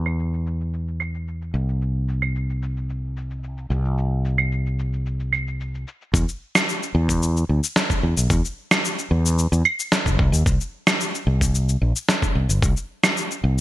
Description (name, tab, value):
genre	sunset chillout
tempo	111 BPM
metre	4/4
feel	straight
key	unclear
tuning	A4 = 441 Hz
part	fretless electric bass	bass	0.0-13.6 s	E1 to E2	-21 LUFS	equal	none
part	electronic claves, shaker and snare drum	drums	0.1-13.4 s	none	-21 LUFS	right 1 dB	overdrive, low-pass filter on perc, low-pass filter on snare, gated reverb
part	electronic kick drum	drums	6.1-12.7 s	none	-22 LUFS	equal	overdrive
room	little or no reverb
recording	bright 1980s-style digital production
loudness	-20 LUFS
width	side -15 dB against mid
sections	0.0-6.1 A section; 6.1-13.6 B section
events	none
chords	none